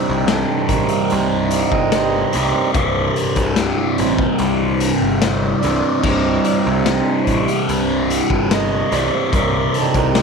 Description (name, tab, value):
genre	psychedelic rock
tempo	73 BPM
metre	4/4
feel	straight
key	C dorian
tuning	A4 = 440 Hz
part	pedal harmonium	sustained chords	0.0-10.2 s	G3 to Eb5	-22 LUFS	right 9 dB	none
part	fuzz guitar	riff	0.0-10.2 s	C2 to C3	-18 LUFS	equal	distortion, phaser
part	fuzz picked electric bass	bass	0.1-10.2 s	C1 to C2	-23 LUFS	left 1 dB	overdrive
part	raw garage drum kit	drums	0.3-10.2 s	crash cymbal, hi-hat, kick drum, snare drum	-22 LUFS	left 4 dB	none
room	light reverb, small room ambience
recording	1960s-style stereo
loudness	-15 LUFS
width	side -5 dB against mid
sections	0.0-10.2 A section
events	harmonium solo 0.0-10.2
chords	0.0 Cm